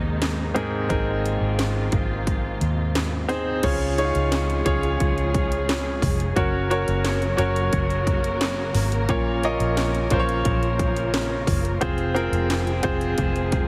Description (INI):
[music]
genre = piano-driven pop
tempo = 88 BPM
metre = 4/4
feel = straight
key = Db major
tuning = A4 = 439 Hz
[part]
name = clear concert grand piano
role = accompaniment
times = 0.0-13.7 s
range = Ab2 to Eb5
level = -27 LUFS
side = equal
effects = none
[part]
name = warm studio string section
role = sustained chords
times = 0.0-13.7 s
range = C3 to Bb4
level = -34 LUFS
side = equal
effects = none
[part]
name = vintage muted fingered electric bass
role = bass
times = 0.0-13.7 s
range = F1 to Eb2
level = -28 LUFS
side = equal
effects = none
[part]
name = house drum kit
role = drums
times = 0.2-13.7 s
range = crash cymbal, handclaps, hi-hat, kick drum, snare drum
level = -29 LUFS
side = equal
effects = overdrive
[sound]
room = moderate concert hall reverb, RT60 2.1 s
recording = heavily compressed radio sound, multiband compression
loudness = -23 LUFS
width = mono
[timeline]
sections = 0.0-3.6 A section; 3.6-13.7 B section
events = none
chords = 0.0 Abadd9; 3.6 Db; 6.4 Gb; 9.1 Bbm; 11.8 Fm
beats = 0.22 | 0.90 1.58 2.27 2.95 | 3.63 4.31 5.00 5.68 | 6.36 7.04 7.73 8.41 | 9.09 9.78 10.46 11.14 | 11.82 12.51 13.19